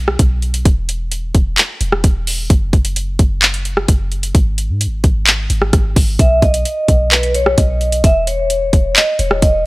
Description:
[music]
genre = hip hop, trap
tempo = 130 BPM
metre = 4/4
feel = half-time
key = B major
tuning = A4 = 438 Hz
[part]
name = clean 808-style bass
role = bass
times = 0.0-9.7 s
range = E1 to G#2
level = -18 LUFS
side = equal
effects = none
[part]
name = trap drum kit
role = drums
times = 0.1-9.5 s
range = handclaps, hi-hat, kick drum, rim click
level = -12 LUFS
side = equal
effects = none
[part]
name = vibraphone with medium mallets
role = melody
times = 6.2-9.7 s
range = B4 to E5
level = -16 LUFS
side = equal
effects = low-pass filter, analog delay
[sound]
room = digital ambience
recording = dry, gritty hardware recording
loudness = -12 LUFS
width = side -21 dB against mid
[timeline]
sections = 0.0-9.7 A section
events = break 0.0-6.2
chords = 0.0 N.C.; 6.2 B; 8.0 C#madd9/E

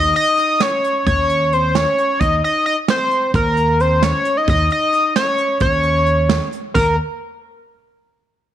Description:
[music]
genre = progressive instrumental, band music in an uneven meter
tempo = 263 BPM (eighths)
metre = 5/8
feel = straight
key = unclear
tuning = A4 = 439 Hz
[part]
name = sync lead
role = melody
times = 0.0-7.0 s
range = Bb4 to Eb5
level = -16 LUFS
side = equal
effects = chorus
[part]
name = upright bass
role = bass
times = 0.0-7.0 s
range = Eb2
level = -19 LUFS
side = equal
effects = none
[part]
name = soft brush drum kit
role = drums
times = 0.2-6.9 s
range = crash cymbal, hi-hat, kick drum, snare drum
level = -22 LUFS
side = right 4 dB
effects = none
[sound]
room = light reverb, small room ambience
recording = 1960s-style stereo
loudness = -14 LUFS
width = side -11 dB against mid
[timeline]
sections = 0.0-6.8 A section; 6.8-7.9 B section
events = none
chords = 0.0 Eb5

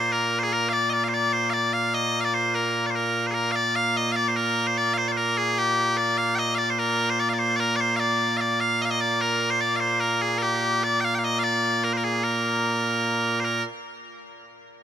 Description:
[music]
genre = scottish traditional, Scottish pipe music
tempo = 99 BPM (dotted quarters)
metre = 6/8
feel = straight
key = Bb mixolydian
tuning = A4 = 439 Hz
[part]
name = loud bright bagpipes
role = solo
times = 0.0-13.6 s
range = Bb2 to G5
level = -22 LUFS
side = equal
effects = none
[sound]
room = moderate huge ambient reverb, RT60 6.9 s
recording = minimal, uncompressed stereo recording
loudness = -21 LUFS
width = side -10 dB against mid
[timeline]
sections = 0.0-3.8 A section; 3.8-13.5 B section; 13.5-14.7 C section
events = none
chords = none

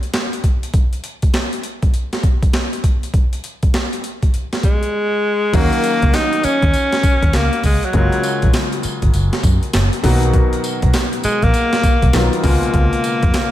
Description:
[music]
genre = R&B, new jack swing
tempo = 100 BPM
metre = 4/4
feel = swing 64% on 16ths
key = Eb minor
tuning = A4 = 442 Hz
[part]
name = boom bap sampler-style drum kit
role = drums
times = 0.0-13.5 s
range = crash cymbal, handclaps, hi-hat, kick drum, snare drum, tambourine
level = -16 LUFS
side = equal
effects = overdrive
[part]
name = bright alto saxophone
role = melody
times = 4.6-13.5 s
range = Gb3 to Eb4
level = -18 LUFS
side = left 1 dB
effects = slapback echo
[part]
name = clear concert grand piano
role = accompaniment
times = 5.5-13.5 s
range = B2 to Gb4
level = -21 LUFS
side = left 2 dB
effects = slapback echo
[part]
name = vintage muted fingered electric bass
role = bass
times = 5.5-13.3 s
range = Gb1 to Gb2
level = -17 LUFS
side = equal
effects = none
[sound]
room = light reverb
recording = none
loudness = -14 LUFS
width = side -13 dB against mid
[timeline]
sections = 0.0-5.5 A section; 5.5-13.5 B section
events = silent gap 4.9-5.5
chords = 0.0 N.C.; 5.5 Ebm7; 7.9 Gbmaj9; 10.0 Bmaj7; 12.4 Db7

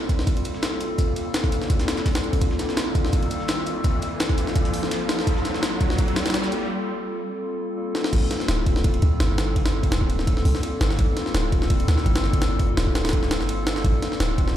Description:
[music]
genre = drum and bass, jungle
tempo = 168 BPM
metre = 4/4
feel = swing 53% on 16ths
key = G minor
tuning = A4 = 440 Hz
[part]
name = warbly tape-like pad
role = sustained chords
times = 0.0-14.6 s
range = G3 to A4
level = -27 LUFS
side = left 1 dB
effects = chorus, built-in reverb
[part]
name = riser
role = sound effects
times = 0.0-6.7 s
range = none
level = -32 LUFS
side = equal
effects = none
[part]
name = breakbeat sampler-style drum kit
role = drums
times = 0.1-6.6 s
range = hi-hat, shaker, snare drum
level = -38 LUFS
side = left 1 dB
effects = high-pass filter on perc, high-pass filter on snare, high-pass filter on hats
[part]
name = jungle sampler-style drum kit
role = drums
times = 0.1-14.6 s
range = crash cymbal, hi-hat, kick drum, ride cymbal, snare drum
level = -22 LUFS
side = equal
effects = none
[part]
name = warm 808-style bass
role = bass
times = 8.1-14.6 s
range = D1 to D2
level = -23 LUFS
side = equal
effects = none
[sound]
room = light reverb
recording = played on a big sound system in a bare room, large studio reverb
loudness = -20 LUFS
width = side -11 dB against mid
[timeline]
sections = 0.0-8.1 A section; 8.1-14.6 B section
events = build-up 0.0-8.1; riser 0.0-6.7; break 6.7-8.1; drum fill 8.0; drop 8.1-14.6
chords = 0.0 Gm11

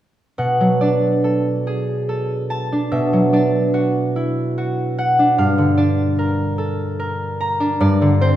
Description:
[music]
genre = classical, solo harp piece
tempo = 49 BPM (dotted quarters)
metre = 6/8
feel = rubato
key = unclear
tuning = A4 = 441 Hz
[part]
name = concert harp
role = solo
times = 0.4-8.4 s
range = G2 to Bb5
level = -16 LUFS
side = equal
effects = none
[sound]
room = wet concert hall reverb, RT60 2.1 s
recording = heard from further back in the room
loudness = -16 LUFS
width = side -12 dB against mid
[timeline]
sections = 0.4-8.4 A section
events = none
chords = 0.4 Bm7; 2.9 D69/B; 5.4 Gm7; 7.8 A#69/G

